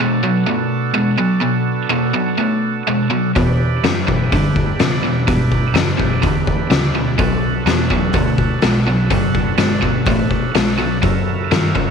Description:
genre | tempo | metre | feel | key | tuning
blues rock power trio and southern rock | 125 BPM | 4/4 | straight | B minor | A4 = 440 Hz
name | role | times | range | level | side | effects
overdriven tonewheel organ | sustained chords | 0.0-11.9 s | B3 to B4 | -23 LUFS | right 8 dB | slow rotary speaker
cranked stack guitar | riff | 0.0-11.9 s | E2 to A3 | -17 LUFS | equal | overdrive
vintage muted picked electric bass | bass | 3.4-11.9 s | F#1 to B2 | -22 LUFS | equal | none
oversized low-tuned drum kit | drums | 3.4-11.9 s | hi-hat, kick drum, snare drum | -19 LUFS | left 3 dB | none
room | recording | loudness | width
light reverb, small room ambience | 1960s-style stereo | -14 LUFS | side -6 dB against mid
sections
0.0-11.9 A section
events
none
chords
0.0 Bm7; 3.4 Em7; 7.2 Bm7; 11.0 F#7#9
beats
0.00 0.48 0.96 | 1.44 1.92 2.40 2.87 | 3.35 3.83 4.31 4.79 | 5.27 5.75 6.23 6.71 | 7.19 7.67 8.15 8.63 | 9.12 9.60 10.08 10.56 | 11.04 11.52

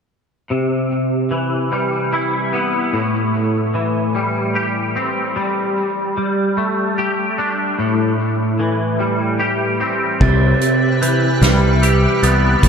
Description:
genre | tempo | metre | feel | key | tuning
post-rock | 50 BPM (dotted quarters) | 6/8 | straight | unclear | A4 = 441 Hz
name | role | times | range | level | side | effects
twangy electric guitar | arpeggios | 0.5-12.7 s | A2 to G4 | -16 LUFS | equal | ensemble chorus, tape echo
icy glass pad | sustained chords | 10.4-12.7 s | C3 to G5 | -22 LUFS | right 3 dB | chorus, built-in reverb
glockenspiel with rubber mallets | arpeggios | 10.2-12.7 s | E6 to A6 | -22 LUFS | right 3 dB | tape echo
growling picked electric bass | bass | 10.2-12.7 s | A1 to C2 | -14 LUFS | equal | overdrive
soft-mallet drum kit | drums | 10.2-12.7 s | crash cymbal, hi-hat, kick drum, snare drum | -19 LUFS | right 1 dB | none
room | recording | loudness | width
wet cathedral reverb, RT60 5.0 s | dreamy mix soaked in reverb | -15 LUFS | side -6 dB against mid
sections
0.5-10.2 A section; 10.2-12.7 A section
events
none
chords
0.5 Cmaj7; 2.9 Am7; 5.4 Gsus2; 7.8 Am7; 10.2 Cmaj7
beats
| 0.51 1.72 | 2.93 4.14 | 5.36 6.57 | 7.79 9.00 | 10.21 11.42 | 12.63

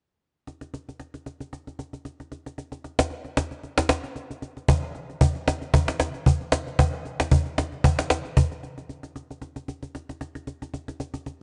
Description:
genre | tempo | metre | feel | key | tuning
amapiano | 114 BPM | 4/4 | swing 55% on 16ths | none | none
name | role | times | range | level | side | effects
cajon | drums | 0.5-11.3 s | none | -25 LUFS | equal | none
room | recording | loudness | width
light reverb, small room ambience | dark, warm production, nothing above 10.3 kHz | -25 LUFS | mono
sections
0.5-8.9 A section; 8.9-11.4 B section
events
none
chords
none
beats
| 0.47 1.00 1.53 2.05 | 2.58 3.10 3.63 4.16 | 4.68 5.21 5.74 6.26 | 6.79 7.32 7.84 8.37 | 8.89 9.42 9.95 10.47 | 11.00

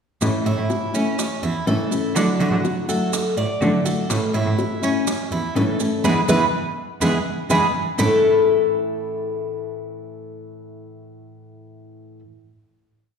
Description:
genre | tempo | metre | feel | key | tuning
latin, Cuban son and guajira | 124 BPM | 4/4 | straight | A major | A4 = 438 Hz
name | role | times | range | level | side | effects
nylon-string guitar | accompaniment | 0.2-12.2 s | A2 to F#4 | -24 LUFS | left 1 dB | none
clear cello | bass | 0.2-8.1 s | E2 to D3 | -24 LUFS | right 2 dB | none
bongos | percussion | 0.2-8.1 s | none | -28 LUFS | left 2 dB | none
maracas | percussion | 0.2-8.1 s | none | -32 LUFS | right 8 dB | none
Cuban tres | arpeggios | 0.5-12.2 s | A3 to D5 | -22 LUFS | left 1 dB | none
room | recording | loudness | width
wet scoring stage reverb, RT60 1.4 s | recorded in a church or concert hall | -18 LUFS | side -6 dB against mid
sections
0.2-8.0 verse; 8.0-11.9 final chord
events
band accent 6.0-8.0; drum fill 7.0-8.0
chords
0.2 A; 2.2 Dadd9; 4.1 A; 6.0 E; 8.0 A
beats
| 0.21 0.70 1.19 1.67 | 2.16 2.65 3.13 3.62 | 4.10 4.59 5.07 5.56 | 6.04 6.53 7.01 7.50 | 7.99 8.47 8.96 9.45 | 9.93 10.42 10.90 11.39

